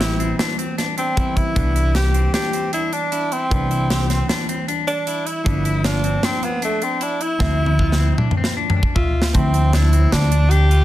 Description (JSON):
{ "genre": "progressive instrumental, band music in an uneven meter", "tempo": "154 BPM", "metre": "5/4", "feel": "straight", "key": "D dorian", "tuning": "A4 = 437 Hz", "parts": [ { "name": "breathy tenor saxophone", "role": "melody", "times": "0.0-10.8 s", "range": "A3 to G4", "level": "-23 LUFS", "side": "equal", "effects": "plate reverb" }, { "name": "vintage hollow-body jazz guitar", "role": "accompaniment", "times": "0.0-10.8 s", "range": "E3 to E5", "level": "-28 LUFS", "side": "right 1 dB", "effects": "none" }, { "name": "clean electric guitar", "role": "arpeggios", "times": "0.0-10.8 s", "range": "B3 to E5", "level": "-27 LUFS", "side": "left 6 dB", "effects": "none" }, { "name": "upright bass", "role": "bass", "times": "0.0-10.8 s", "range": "G1 to D2", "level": "-17 LUFS", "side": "equal", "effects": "none" }, { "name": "tight metal drum kit", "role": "drums", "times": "0.0-10.8 s", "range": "hi-hat, kick drum, snare drum, toms", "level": "-22 LUFS", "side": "equal", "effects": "none" } ], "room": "light reverb", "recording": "dense, heavily limited modern master", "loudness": "-16 LUFS", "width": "side -14 dB against mid", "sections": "0.0-9.3 A section; 9.3-10.8 B section", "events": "drum fill 7.4-9.3", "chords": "0.0 Am7; 1.6 Cmaj7; 5.5 G7; 7.4 Dm9", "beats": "0.00 0.39 0.78 1.17 | 1.56 1.95 2.34 2.73 3.12 | 3.51 3.90 4.29 4.68 5.07 | 5.46 5.85 6.24 6.62 7.01 | 7.40 7.79 8.18 8.57 8.96 | 9.35 9.74 10.13 10.52" }